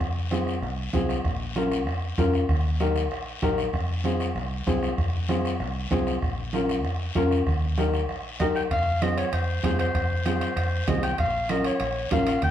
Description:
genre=latin, cumbia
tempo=193 BPM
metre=4/4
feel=straight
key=F minor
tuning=A4 = 435 Hz
part: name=vintage muted fingered electric bass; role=bass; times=0.0-12.5 s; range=Bb1 to F2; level=-28 LUFS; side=equal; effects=none
part: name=bombo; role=percussion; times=0.0-12.5 s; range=none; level=-30 LUFS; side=right 1 dB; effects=none
part: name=congas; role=percussion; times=0.0-12.5 s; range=none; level=-33 LUFS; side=right 4 dB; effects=none
part: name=guiro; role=percussion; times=0.0-12.5 s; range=none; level=-39 LUFS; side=left 5 dB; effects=none
part: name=dark upright piano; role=accompaniment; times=0.3-12.3 s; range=C4 to Bb4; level=-27 LUFS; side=left 3 dB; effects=none
part: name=mellow clarinet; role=melody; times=8.4-12.5 s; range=C5 to G5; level=-28 LUFS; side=equal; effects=none
part: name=timbales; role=percussion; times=8.7-12.5 s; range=none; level=-39 LUFS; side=right 5 dB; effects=none
room=wet studio reverb, RT60 0.7 s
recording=heard from further back in the room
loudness=-23 LUFS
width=side -10 dB against mid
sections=0.0-8.7 A section; 8.7-12.5 B section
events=none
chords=0.0 Fm; 1.2 Bbm; 2.5 Eb; 3.7 Fm; 6.2 Bbm; 7.5 Eb; 8.7 Fm; 11.2 Bbm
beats=| 0.00 0.31 0.62 0.94 | 1.25 1.56 1.87 2.18 | 2.49 2.80 3.11 3.42 | 3.73 4.05 4.36 4.67 | 4.98 5.29 5.60 5.91 | 6.22 6.54 6.85 7.16 | 7.47 7.78 8.09 8.40 | 8.71 9.02 9.33 9.64 | 9.95 10.26 10.57 10.88 | 11.19 11.50 11.81 12.12 | 12.43

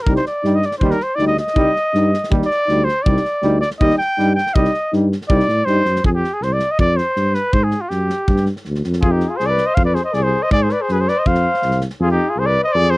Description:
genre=balkan folk, Balkan brass band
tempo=161 BPM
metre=2/4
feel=straight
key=C minor, F dorian sharp4 from 6.0 s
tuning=A4 = 439 Hz
part: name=warm trumpet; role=melody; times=0.0-13.0 s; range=F4 to G5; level=-18 LUFS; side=equal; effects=none
part: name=bright trombone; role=accompaniment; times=0.1-5.8 s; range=G3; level=-23 LUFS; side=right 4 dB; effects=none
part: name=mellow euphonium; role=accompaniment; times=0.1-5.8 s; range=Eb4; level=-21 LUFS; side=left 2 dB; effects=none
part: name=mellow tuba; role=bass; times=0.1-12.9 s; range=C2 to A2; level=-19 LUFS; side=equal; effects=none
part: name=loose indie drum kit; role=percussion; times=0.1-11.9 s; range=kick drum, snare drum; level=-20 LUFS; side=equal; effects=none
part: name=warm flugelhorn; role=second line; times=9.0-13.0 s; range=Eb4 to C5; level=-22 LUFS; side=left 4 dB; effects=none
room=little or no reverb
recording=dry, close 1970s-style studio recording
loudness=-15 LUFS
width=side -21 dB against mid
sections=0.0-6.0 A section; 6.0-12.0 B section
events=trumpet solo 0.0-6.0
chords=0.0 Cm; 0.8 Eb; 1.6 Cm; 2.3 Eb; 3.1 Cm; 3.8 Eb; 4.6 Cm; 6.0 F5; 7.5 Fmadd9 (rootless); 8.3 G5; 9.0 F5; 10.5 Ab7#9; 11.3 F5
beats=| 0.06 0.44 | 0.81 1.19 | 1.56 1.94 | 2.31 2.69 | 3.06 3.43 | 3.81 4.18 | 4.55 4.93 | 5.30 5.67 | 6.04 6.42 | 6.79 7.16 | 7.54 7.91 | 8.28 8.65 | 9.03 9.40 | 9.77 10.14 | 10.52 10.89 | 11.26 11.63 | 12.00 12.37 | 12.74

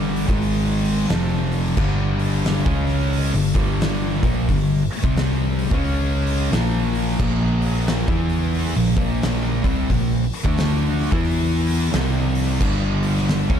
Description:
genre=stoner and doom metal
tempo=89 BPM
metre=4/4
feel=swing 62% on 8ths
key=unclear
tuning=A4 = 440 Hz
part: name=high-gain distorted guitar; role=riff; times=0.0-13.6 s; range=F2 to E4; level=-27 LUFS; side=equal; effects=distortion
part: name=thick fuzz guitar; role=riff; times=0.0-13.6 s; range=F2 to E4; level=-24 LUFS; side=left 9 dB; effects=distortion
part: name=thick fuzz guitar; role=riff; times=0.0-13.6 s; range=F2 to E4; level=-25 LUFS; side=right 10 dB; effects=distortion
part: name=hollow-body short-scale fingered electric bass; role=bass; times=0.0-13.6 s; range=F1 to E2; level=-24 LUFS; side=equal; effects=overdrive
part: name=oversized low-tuned drum kit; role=drums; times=0.2-13.6 s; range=crash cymbal, hi-hat, kick drum, snare drum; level=-24 LUFS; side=equal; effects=none
room=studio reverb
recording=dark, warm production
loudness=-18 LUFS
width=side -8 dB against mid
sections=0.0-13.6 A section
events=none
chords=0.2 G#5; 1.1 F5; 1.8 G5; 2.6 C#5; 3.3 G5; 5.0 C5; 5.7 C#5; 6.5 Bb5; 8.0 E5; 8.7 Bb5; 10.4 D5; 11.1 E5; 11.9 C5; 12.6 G5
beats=0.41 1.09 | 1.77 2.45 3.13 3.81 | 4.48 5.16 5.84 6.51 | 7.19 7.87 8.54 9.22 | 9.90 10.57 11.25 11.93 | 12.61 13.28

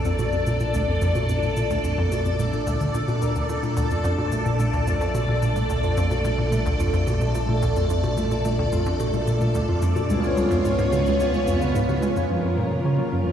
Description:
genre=ambient, sequencer-driven space music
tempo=109 BPM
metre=4/4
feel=straight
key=Bb major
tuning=A4 = 441 Hz
part: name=string machine, full ensemble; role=sustained chords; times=0.0-13.3 s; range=Cb4 to D5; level=-25 LUFS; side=equal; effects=phaser, ensemble chorus
part: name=concert harp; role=arpeggios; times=0.0-13.3 s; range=E#3 to Cb5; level=-30 LUFS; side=right 1 dB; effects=auto-pan, tape echo
part: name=hollow square pluck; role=riff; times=0.0-13.3 s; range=Db2 to Ab3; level=-23 LUFS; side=equal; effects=chorus, tape echo
part: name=round analog bass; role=bass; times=0.0-13.3 s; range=F#1 to Db2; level=-30 LUFS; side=equal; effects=none
part: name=cabasa and bongos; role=percussion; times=0.0-12.3 s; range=none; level=-40 LUFS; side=right 1 dB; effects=overdrive, tape echo
room=moderate huge ambient reverb, RT60 8.5 s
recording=played on a big sound system in a bare room, stone room reverb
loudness=-20 LUFS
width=side -9 dB against mid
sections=0.0-12.3 A section; 12.3-13.3 B section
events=fade-in on harp 0.0-12.3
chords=0.0 Bbmaj7; 10.1 Db7; 12.3 F#maj7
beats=0.19 0.74 | 1.29 1.84 2.39 2.94 | 3.49 4.04 4.59 5.14 | 5.70 6.25 6.80 7.35 | 7.90 8.45 9.00 9.55 | 10.10 10.65 11.20 11.75 | 12.30 12.85

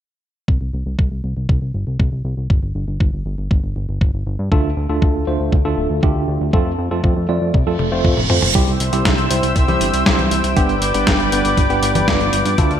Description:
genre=italo disco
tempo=119 BPM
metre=4/4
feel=straight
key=C major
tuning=A4 = 439 Hz
part: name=fat analog bass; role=bass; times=0.5-12.8 s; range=D1 to G2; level=-21 LUFS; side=equal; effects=tube saturation
part: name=electronic kick drum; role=drums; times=0.5-12.7 s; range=none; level=-17 LUFS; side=equal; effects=none
part: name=tine electric piano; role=stabs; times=4.5-12.8 s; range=G3 to D5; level=-20 LUFS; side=right 2 dB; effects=overdrive, fast stereo tremolo, digital delay
part: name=reverse cymbal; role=sound effects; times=7.8-8.5 s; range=none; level=-22 LUFS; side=right 4 dB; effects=none
part: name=dusty soul sampler-style drum kit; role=drums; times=7.8-12.8 s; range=congas, hi-hat, snare drum, toms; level=-20 LUFS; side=left 1 dB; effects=overdrive, gated reverb
part: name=lush unison pad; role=sustained chords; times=8.6-12.8 s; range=A4 to E6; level=-19 LUFS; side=left 1 dB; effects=chorus
room=moderate lush hall reverb, RT60 2.3 s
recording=bright 1980s-style digital production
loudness=-15 LUFS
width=side -10 dB against mid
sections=0.5-8.5 A section; 8.5-12.8 B section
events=filter sweep on analog synth bass 0.5-8.5; reverse cymbal 7.8-8.5; drum fill 7.8-8.5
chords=0.5 C5; 2.5 N.C.; 4.5 Dm; 6.5 F; 8.5 C; 10.6 G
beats=| 0.48 0.99 1.49 2.00 | 2.50 3.00 3.51 4.01 | 4.52 5.02 5.52 6.03 | 6.53 7.04 7.54 8.04 | 8.55 9.05 9.56 10.06 | 10.57 11.07 11.57 12.08 | 12.58

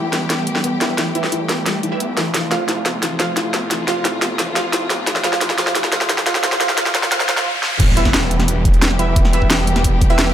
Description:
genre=dark technical drum and bass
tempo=176 BPM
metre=4/4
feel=straight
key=E phrygian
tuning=A4 = 440 Hz
part: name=warm symphonic string section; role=sustained chords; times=0.0-10.3 s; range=C3 to G4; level=-24 LUFS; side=equal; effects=sidechain pumping
part: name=felt-muted upright piano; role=arpeggios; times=0.0-7.4 s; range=E3 to E4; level=-26 LUFS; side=left 3 dB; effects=sidechain pumping, digital delay
part: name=snarling distorted saw bass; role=bass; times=0.0-10.3 s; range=E1 to D2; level=-24 LUFS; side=equal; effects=distortion, overdrive, high-pass filter
part: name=drum and bass drum kit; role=drums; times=0.1-10.3 s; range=crash cymbal, hi-hat, snare drum, toms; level=-19 LUFS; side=equal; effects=overdrive, high-pass filter on hats, high-pass filter on snare, high-pass filter on toms, high-pass filter on cymbals, high-pass filter on room
part: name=orchestra-hit-like synth stab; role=stabs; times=0.8-10.2 s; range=E4 to F5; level=-24 LUFS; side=right 3 dB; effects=built-in reverb, digital delay
part: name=riser and impact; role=sound effects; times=4.4-9.2 s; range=none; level=-27 LUFS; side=equal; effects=none
part: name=electronic kick drum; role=drums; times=7.8-10.1 s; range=none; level=-15 LUFS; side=equal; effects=overdrive
room=light reverb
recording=high-pass filter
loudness=-15 LUFS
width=side -10 dB against mid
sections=0.0-7.8 A section; 7.8-10.3 B section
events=build-up 0.0-7.8; drum fill 0.0-7.5, 7.5; filter sweep on synth stab 0.0-7.8; filter sweep 0.0-7.8; break 7.5-7.8; drop 7.8-10.3; impact 7.8-9.2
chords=0.0 Em; 2.3 F; 7.8 Em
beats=0.30 0.64 | 0.98 1.32 1.66 2.00 | 2.34 2.69 3.03 3.37 | 3.71 4.05 4.39 4.73 | 5.07 5.41 5.75 6.09 | 6.43 6.78 7.12 7.46 | 7.80 8.14 8.48 8.82 | 9.16 9.50 9.84 10.19

